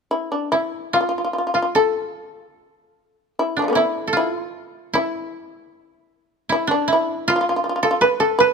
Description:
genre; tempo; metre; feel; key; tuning
japanese traditional; 71-81 BPM; 4/4; rubato; unclear; A4 = 440 Hz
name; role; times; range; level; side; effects
shamisen; melody; 0.1-8.5 s; D3 to B4; -19 LUFS; left 1 dB; none
koto; second line; 0.5-8.5 s; D4 to B4; -22 LUFS; right 3 dB; none
room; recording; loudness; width
moderate recital hall reverb, RT60 1.8 s; close, detailed microphones; -18 LUFS; side -5 dB against mid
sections
0.5-8.5 A section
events
none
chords
none

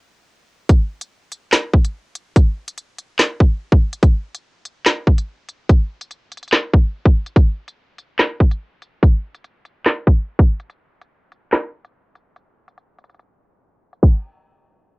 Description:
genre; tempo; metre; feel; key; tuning
hip hop; 144 BPM; 4/4; half-time; none; none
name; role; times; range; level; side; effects
drill drum kit; drums; 0.7-14.1 s; crash cymbal, handclaps, hi-hat, kick drum, snare drum; -13 LUFS; equal; none
room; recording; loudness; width
little or no reverb; home recording on cassette, low-pass filter; -15 LUFS; side -29 dB against mid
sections
0.7-14.0 A section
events
break 0.0-0.7; filter sweep 0.7-14.0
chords
none

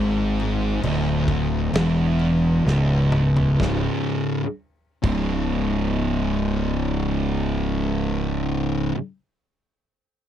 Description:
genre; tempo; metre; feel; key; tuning
stoner and doom metal; 62-69 BPM; 4/4; straight; C# minor; A4 = 440 Hz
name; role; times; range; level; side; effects
thick fuzz guitar; riff; 0.0-9.0 s; C#2 to C#3; -21 LUFS; equal; distortion
fuzz fingered electric bass; bass; 0.0-8.9 s; C#1 to G#1; -25 LUFS; equal; overdrive
big rock drum kit; drums; 0.4-5.3 s; crash cymbal, kick drum, snare drum, toms; -28 LUFS; equal; none
room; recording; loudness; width
light reverb; dry, close 1970s-style studio recording; -20 LUFS; side -10 dB against mid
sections
0.0-3.6 A section; 3.6-7.4 B section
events
slowing down 0.0-3.6; drum fill 2.6-3.6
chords
0.0 C#m; 3.6 C#5

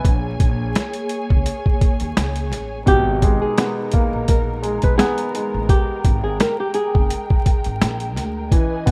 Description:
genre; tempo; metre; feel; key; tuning
hip hop, boom-bap hip-hop; 85 BPM; 4/4; swing 55% on 16ths; G# harmonic minor; A4 = 439 Hz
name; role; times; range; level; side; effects
dark baby grand piano; accompaniment; 0.0-8.9 s; B2 to B3; -27 LUFS; equal; high-pass filter, low-pass filter
warm studio string section; sustained chords; 0.0-8.9 s; G#3 to G#5; -30 LUFS; equal; high-pass filter, low-pass filter
upright bass; bass; 0.0-8.5 s; F#1 to D#2; -27 LUFS; equal; none
boom bap sampler-style drum kit; drums; 0.0-8.9 s; hi-hat, kick drum, snare drum; -20 LUFS; equal; none
flamenco guitar; melody; 2.9-8.0 s; G4 to B4; -25 LUFS; equal; high-pass filter, low-pass filter
room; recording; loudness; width
studio ambience; rough home demo mix, vinyl crackle; -19 LUFS; mono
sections
0.0-8.9 A section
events
break 0.0-2.9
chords
0.0 A#m7; 2.9 G#madd9

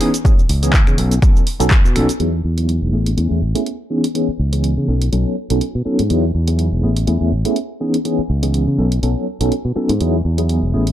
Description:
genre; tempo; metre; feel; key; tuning
filtered disco house; 123 BPM; 4/4; swing 55% on 16ths; E major; A4 = 440 Hz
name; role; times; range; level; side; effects
tine electric piano; accompaniment; 0.0-10.9 s; E3 to A4; -19 LUFS; equal; medium tremolo, phaser, sidechain pumping, low-pass filter
punchy analog drum machine; drums; 0.0-10.9 s; finger snaps, handclaps, hi-hat, shaker; -25 LUFS; right 1 dB; sidechain pumping on perc, sidechain pumping on hats
electronic kick drum; drums; 0.2-1.8 s; none; -13 LUFS; equal; none
modern bright fingered electric bass; bass; 0.4-10.9 s; E1 to C#3; -17 LUFS; equal; sidechain pumping, low-pass filter
room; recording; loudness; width
digital ambience; dark, warm production; -14 LUFS; side -12 dB against mid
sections
0.0-2.2 A section; 2.2-10.9 B section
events
filter sweep 0.0-2.2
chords
0.0 C#m9; 1.0 B9; 2.2 Emaj7; 2.9 Amaj7; 3.9 C#m9; 4.9 B9; 6.1 Emaj7; 6.8 Amaj7; 7.8 C#m9; 8.8 B9; 10.0 Emaj7

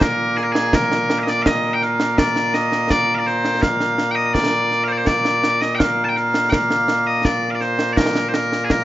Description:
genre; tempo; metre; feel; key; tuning
scottish traditional, Scottish pipe music; 83 BPM; 2/4; straight; Bb major; A4 = 441 Hz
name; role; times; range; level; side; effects
loud bright bagpipes; melody; 0.0-8.8 s; Bb2 to A5; -17 LUFS; equal; none
concert snare drum and concert bass drum; drums; 0.0-8.8 s; none; -21 LUFS; right 1 dB; none
room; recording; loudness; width
moderate plate reverb, RT60 2.5 s; rough home demo mix, nothing above 7.6 kHz; -16 LUFS; side -14 dB against mid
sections
0.0-8.8 A section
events
none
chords
none

